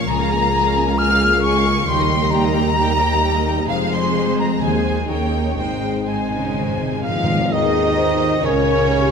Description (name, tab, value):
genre	classical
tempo	120-136 BPM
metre	4/4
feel	rubato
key	Ab major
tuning	A4 = 440 Hz
part	warm symphonic violin section	melody	0.0-9.1 s	C5 to Ab5	-28 LUFS	left 4 dB	none
part	rich symphonic violin section	second line	0.0-9.1 s	Db5 to F6	-26 LUFS	left 2 dB	none
part	rich chamber viola section	accompaniment	0.0-9.1 s	G3 to Bb4	-27 LUFS	right 2 dB	none
part	dark French horn section	sustained chords	0.0-9.1 s	G3 to C5	-24 LUFS	left 3 dB	none
part	concert harp	arpeggios	0.0-9.1 s	Ab2 to Bb4	-26 LUFS	left 7 dB	none
part	rich symphonic cello section	bass	0.0-9.1 s	Db2 to F3	-24 LUFS	right 4 dB	none
part	rich symphonic double bass section	bass	0.0-9.1 s	F1 to Eb2	-25 LUFS	right 4 dB	none
part	concert flute	second line	0.1-9.1 s	Db5 to F6	-23 LUFS	left 2 dB	none
part	timpani	percussion	4.6-7.5 s	Ab2 to Eb3	-26 LUFS	left 1 dB	none
part	warm cor anglais	second line	7.0-9.1 s	Db5 to F5	-23 LUFS	right 4 dB	none
part	mellow clarinet	second line	7.5-9.1 s	Db4 to Eb4	-27 LUFS	equal	none
part	mellow bassoon	accompaniment	7.5-9.1 s	Db3 to Eb3	-24 LUFS	right 2 dB	none
room	wet scoring stage reverb, RT60 1.7 s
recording	none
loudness	-16 LUFS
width	side -6 dB against mid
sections	0.0-7.5 A section; 7.5-9.1 B section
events	timpani fill 5.6-7.5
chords	0.1 Bbm7/Db; 1.9 Eb; 3.7 Fm; 4.6 Ab/Eb; 5.1 Eb7; 5.6 Ab; 7.5 Ab/Eb; 8.5 Eb7/Db